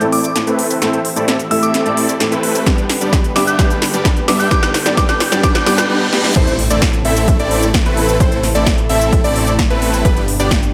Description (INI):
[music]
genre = EDM, festival progressive house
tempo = 130 BPM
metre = 4/4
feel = straight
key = A minor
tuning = A4 = 441 Hz
[part]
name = felt-muted upright piano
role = accompaniment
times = 0.0-5.8 s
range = G2 to A4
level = -25 LUFS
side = equal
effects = sidechain pumping, digital delay
[part]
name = lush unison pad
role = sustained chords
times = 0.0-10.7 s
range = B2 to E5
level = -28 LUFS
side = equal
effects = chorus, sidechain pumping
[part]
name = supersaw chords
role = riff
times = 0.0-10.6 s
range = G3 to E5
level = -20 LUFS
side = equal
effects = sidechain pumping, low-pass filter, digital delay
[part]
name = big-room dance drum kit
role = drums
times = 0.0-10.7 s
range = cabasa, crash cymbal, hi-hat, snare drum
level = -22 LUFS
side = equal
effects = none
[part]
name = riser, reverse cymbal and impact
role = sound effects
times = 1.9-8.2 s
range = none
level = -28 LUFS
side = equal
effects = none
[part]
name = glassy synth bell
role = melody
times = 0.1-5.9 s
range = D6 to G6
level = -22 LUFS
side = equal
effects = chorus, tremolo, digital delay
[part]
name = electronic kick drum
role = drums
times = 2.7-10.6 s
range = none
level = -17 LUFS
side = equal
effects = none
[part]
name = plucky unison lead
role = arpeggios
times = 6.4-10.6 s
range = B4 to E5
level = -23 LUFS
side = equal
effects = sidechain pumping, digital delay
[part]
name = detuned saw bass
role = bass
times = 6.4-10.7 s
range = G1 to A1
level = -22 LUFS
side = equal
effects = chorus, sidechain pumping
[sound]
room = moderate digital room reverb, RT60 1.2 s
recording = none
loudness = -14 LUFS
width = mono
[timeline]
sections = 0.0-6.4 A section; 6.4-10.7 B section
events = build-up 0.0-6.4; drum fill 0.0-5.9, 6.1; filter sweep on supersaw synth 0.0-6.4; reverse cymbal 5.4-6.4; drop 6.4-10.7; impact 6.4-8.2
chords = 0.0 Am; 2.7 G; 6.4 Am; 10.0 G